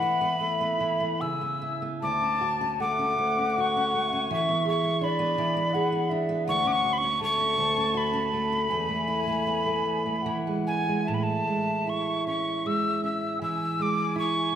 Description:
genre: celtic folk, Celtic slow air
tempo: 72-84 BPM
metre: 3/4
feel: rubato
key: A major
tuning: A4 = 441 Hz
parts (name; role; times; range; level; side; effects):
- breathy mid whistle; melody; 0.0-14.6 s; G#5 to E6; -27 LUFS; equal; none
- wooden flute; second line; 0.0-14.6 s; D5 to A5; -30 LUFS; left 3 dB; none
- fingerpicked steel-string acoustic guitar; accompaniment; 0.0-14.6 s; D2 to G#4; -28 LUFS; right 1 dB; none
room: wet recital hall reverb, RT60 1.5 s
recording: recorded in a church or concert hall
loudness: -24 LUFS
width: side -9 dB against mid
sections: 0.0-11.1 A section; 11.1-14.6 B section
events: none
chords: 0.0 Esus4; 1.2 C#m7; 2.0 Dmaj7; 4.3 E7; 6.5 Dmaj7; 8.7 Esus4; 10.2 Eadd9; 11.1 Amaj7; 13.4 E

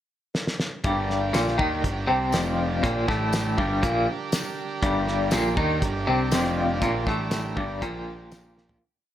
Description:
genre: psychedelic rock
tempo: 120 BPM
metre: 4/4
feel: straight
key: G minor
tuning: A4 = 435 Hz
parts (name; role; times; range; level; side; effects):
- cloth-damped thuddy drum kit; drums; 0.3-8.8 s; hi-hat, kick drum, snare drum, toms; -28 LUFS; equal; none
- overdriven combo organ; sustained chords; 0.8-8.8 s; D3 to Bb4; -32 LUFS; right 5 dB; lush chorus
- twelve-string electric guitar; riff; 0.8-8.8 s; F2 to Eb3; -24 LUFS; left 1 dB; tremolo
- fuzz picked electric bass; bass; 0.8-8.8 s; F1 to Eb2; -29 LUFS; equal; overdrive
- tambourine; percussion; 1.3-8.4 s; none; -39 LUFS; left 8 dB; none
room: light reverb, studio ambience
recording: none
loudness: -22 LUFS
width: side -11 dB against mid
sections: 0.0-0.8 pickup bar; 0.8-8.8 riff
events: drum fill 0.3-0.8, 8.6; fade-out 6.8-8.8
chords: 0.0 N.C.; 0.8 Gm

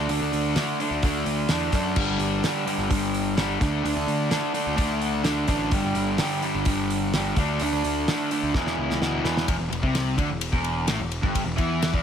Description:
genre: classic rock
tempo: 128 BPM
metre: 4/4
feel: straight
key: E minor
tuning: A4 = 440 Hz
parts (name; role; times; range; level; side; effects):
- overdriven electric guitar; riff; 0.0-12.0 s; E2 to D4; -24 LUFS; equal; spring reverb
- fuzz picked electric bass; bass; 0.0-12.0 s; E1 to F#2; -29 LUFS; equal; overdrive
- damped 70s drum kit; drums; 0.1-12.0 s; crash cymbal, hi-hat, kick drum, ride cymbal, snare drum; -28 LUFS; equal; none
room: light reverb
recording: none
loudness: -22 LUFS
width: side -8 dB against mid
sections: 0.0-9.5 A section; 9.5-12.0 B section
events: drum fill 8.5-9.5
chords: 0.0 D5; 2.0 G5; 3.6 D5; 5.7 G5; 7.4 D5; 8.5 E5; 9.5 Em

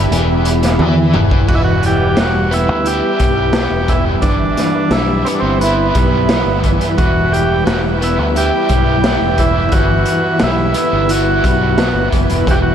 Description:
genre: psychedelic rock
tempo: 88 BPM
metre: 4/4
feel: straight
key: E minor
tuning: A4 = 440 Hz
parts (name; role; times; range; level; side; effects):
- clear studio string section; sustained chords; 0.0-12.7 s; G3 to B5; -23 LUFS; right 3 dB; none
- overdriven electric guitar; riff; 0.0-12.7 s; E2 to E4; -18 LUFS; left 1 dB; harmonic tremolo
- fingered electric bass; bass; 0.0-12.7 s; E1 to E2; -18 LUFS; equal; none
- raw garage drum kit; drums; 0.1-12.6 s; crash cymbal, hi-hat, kick drum, snare drum, toms; -17 LUFS; equal; none
- combo organ; melody; 1.5-12.7 s; B3 to G4; -17 LUFS; right 2 dB; diffuse ambient delay
room: moderate lush hall reverb, RT60 3.0 s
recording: dreamy mix soaked in reverb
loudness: -12 LUFS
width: side -9 dB against mid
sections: 0.0-1.5 A section; 1.5-12.7 B section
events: drum fill 0.8-1.5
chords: 0.0 Em

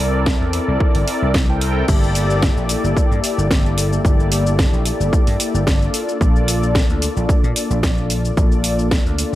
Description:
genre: nu-disco, nu disco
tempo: 111 BPM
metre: 4/4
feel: swing 53% on 16ths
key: G dorian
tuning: A4 = 437 Hz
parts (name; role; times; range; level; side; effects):
- mellow synth brass; accompaniment; 0.0-9.4 s; Bb3 to G5; -21 LUFS; left 2 dB; chorus, sidechain pumping, analog delay
- vintage slap bass; bass; 0.0-9.4 s; G1 to Bb2; -20 LUFS; equal; tube saturation
- electronic kick drum; drums; 0.3-9.0 s; none; -17 LUFS; equal; overdrive
- house drum kit; drums; 0.3-9.3 s; crash cymbal, hi-hat, shaker, snare drum; -24 LUFS; equal; overdrive
room: light reverb, digital ambience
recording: echo-heavy mix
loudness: -15 LUFS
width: side -15 dB against mid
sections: 0.0-9.4 A section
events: none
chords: 0.0 C13; 1.9 Gm69; 5.9 Bbmaj7

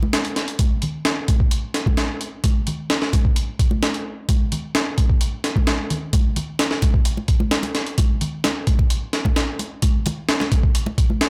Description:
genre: breakbeat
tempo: 130 BPM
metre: 4/4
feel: straight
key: none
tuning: none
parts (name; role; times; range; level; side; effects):
- congas; percussion; 0.0-11.3 s; none; -31 LUFS; equal; none
- breakbeat sampler-style drum kit; drums; 0.1-11.3 s; hi-hat, kick drum, snare drum; -21 LUFS; equal; none
room: little or no reverb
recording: none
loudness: -21 LUFS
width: mono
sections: 0.0-11.3 A section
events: none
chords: none

